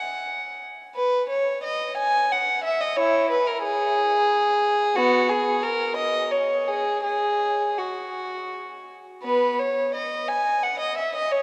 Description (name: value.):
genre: classical, baroque-style suite movement for unaccompanied violin.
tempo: 80-91 BPM.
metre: 3/4.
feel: rubato.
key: F# major from 5.0 s.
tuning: A4 = 440 Hz.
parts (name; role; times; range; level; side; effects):
warm violin; solo; 0.0-11.4 s; B3 to G#5; -24 LUFS; equal; none.
room: wet cathedral reverb, RT60 5.1 s.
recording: dark, warm production.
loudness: -24 LUFS.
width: mono.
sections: 0.0-9.2 A section; 9.2-11.4 A section.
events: none.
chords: none.